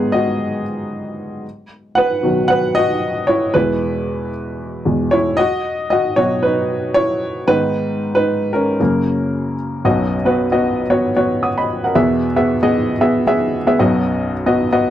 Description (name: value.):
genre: pop.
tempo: 114 BPM.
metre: 4/4.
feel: swing 56% on 16ths.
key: B major.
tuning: A4 = 440 Hz.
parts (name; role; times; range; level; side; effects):
warm upright piano; solo; 0.0-14.9 s; B1 to D#6; -15 LUFS; equal; none.
room: light reverb.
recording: dry, close 1970s-style studio recording.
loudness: -15 LUFS.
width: side -11 dB against mid.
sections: 0.0-9.8 A section; 9.8-14.9 B section.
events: upright piano solo 0.0-9.8.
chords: 0.0 G#m; 1.4 B; 3.5 E; 5.4 B; 7.5 G#m; 8.8 F#; 9.8 B; 12.0 E; 13.8 B.